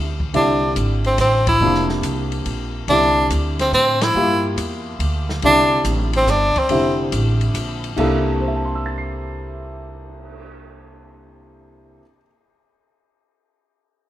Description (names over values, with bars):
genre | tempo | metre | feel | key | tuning
modal jazz | 142 BPM | 3/4 | swing 68% on 8ths | C mixolydian | A4 = 443 Hz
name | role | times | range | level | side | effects
upright bass | bass | 0.0-12.0 s | F1 to A2 | -22 LUFS | right 1 dB | none
open jazz drum kit | drums | 0.2-10.4 s | crash cymbal, cymbal swell, hi-hat, kick drum, ride cymbal, snare drum | -28 LUFS | left 2 dB | none
warm baby grand piano | accompaniment | 0.3-12.3 s | C3 to C7 | -23 LUFS | left 1 dB | none
bright tenor saxophone | melody | 0.4-7.0 s | C4 to E4 | -17 LUFS | equal | none
room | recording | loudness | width
light reverb | minimal, uncompressed stereo recording | -16 LUFS | side -13 dB against mid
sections
0.0-8.0 A section; 8.0-10.5 B section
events
band accent 1.4, 3.9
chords
0.3 Dm7; 2.9 C13; 5.4 Dm7; 8.0 C13